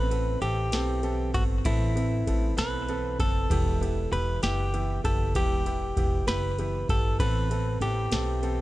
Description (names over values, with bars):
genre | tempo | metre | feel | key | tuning
six-eight pop ballad | 65 BPM (dotted quarters) | 6/8 | straight | unclear | A4 = 440 Hz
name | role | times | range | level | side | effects
direct-recorded clean electric guitar | melody | 0.0-8.6 s | E4 to B4 | -31 LUFS | equal | ping-pong delay
bright upright piano | accompaniment | 0.0-8.6 s | B3 to A4 | -34 LUFS | equal | none
picked steel-string acoustic guitar | arpeggios | 0.0-8.6 s | E2 to E4 | -38 LUFS | right 3 dB | ping-pong delay
upright bass | bass | 0.0-8.6 s | E1 to B1 | -29 LUFS | equal | none
booming analog drum machine | drums | 0.1-8.6 s | kick drum, ride cymbal, snare drum | -29 LUFS | equal | none
room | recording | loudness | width
studio reverb | dark, warm production | -24 LUFS | side -17 dB against mid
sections
0.0-8.6 A section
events
none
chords
0.0 Amadd9; 3.5 Em; 7.2 Amadd9